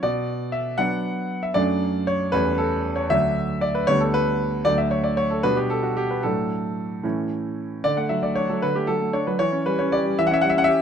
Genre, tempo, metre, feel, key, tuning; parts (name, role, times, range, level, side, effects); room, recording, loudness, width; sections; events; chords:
classical-period piano sonatina; 77 BPM (dotted quarters); 6/8; straight; D major; A4 = 440 Hz
clear concert grand piano; solo; 0.0-10.8 s; D2 to F#5; -20 LUFS; equal
light reverb; close, detailed microphones; -20 LUFS; side -8 dB against mid
0.0-7.8 A section; 7.8-10.8 B section
0.0 Bm; 1.6 D/F#; 2.3 A7/E; 3.1 D; 3.9 G/D; 4.6 D; 5.4 G/B; 6.2 D/A; 7.0 A; 7.8 D; 9.4 C#dim/E